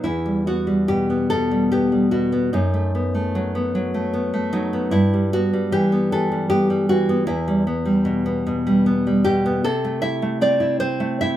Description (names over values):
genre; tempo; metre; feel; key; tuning
romantic piece for solo classical guitar; 50 BPM (dotted quarters); 6/8; uneven beats, rubato; E minor; A4 = 440 Hz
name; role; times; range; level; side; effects
nylon-string guitar; solo; 0.0-11.4 s; E2 to E5; -18 LUFS; equal; none
room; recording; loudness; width
light reverb; band playing live in one room; -18 LUFS; side -12 dB against mid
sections
0.1-11.4 A section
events
none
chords
0.1 Em; 2.5 B7/F#; 4.9 Em/G; 7.3 Em; 9.6 Am/C